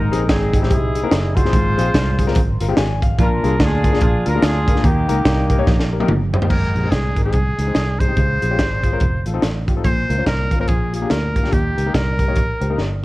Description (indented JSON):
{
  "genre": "uptempo gospel",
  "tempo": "144 BPM",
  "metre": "4/4",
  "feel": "swing 60% on 8ths",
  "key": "Ab major",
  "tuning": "A4 = 439 Hz",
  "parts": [
    { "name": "mellow horn section", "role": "melody", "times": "0.0-6.1 s", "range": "Bb3 to C5", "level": "-22 LUFS", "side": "equal", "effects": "cassette tape" },
    { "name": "clear grand piano", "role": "accompaniment", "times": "0.0-13.0 s", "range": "Ab2 to Ab5", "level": "-24 LUFS", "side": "left 5 dB", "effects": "cassette tape" },
    { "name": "fingered electric bass", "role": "bass", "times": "0.0-13.0 s", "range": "F1 to Eb2", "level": "-20 LUFS", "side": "equal", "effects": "none" },
    { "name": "crisp fusion drum kit", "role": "drums", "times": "0.1-12.9 s", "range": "crash cymbal, hi-hat, kick drum, snare drum, toms", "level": "-18 LUFS", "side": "equal", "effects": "cassette tape" },
    { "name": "bright trumpet", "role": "melody", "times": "6.5-12.8 s", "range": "G4 to C5", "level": "-24 LUFS", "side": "equal", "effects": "cassette tape" }
  ],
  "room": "small room ambience",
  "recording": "home recording on cassette",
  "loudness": "-15 LUFS",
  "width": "side -18 dB against mid",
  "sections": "0.0-6.5 A section; 6.5-13.0 B section",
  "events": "drum fill 5.7-6.5, 12.8",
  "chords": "0.0 Ab; 0.7 C7alt; 1.5 Fm/Ab; 3.2 Bb7; 4.8 Eb; 6.5 Ab; 8.2 Db; 9.0 F7; 9.8 Bbm; 10.7 Bb7; 11.5 Eb"
}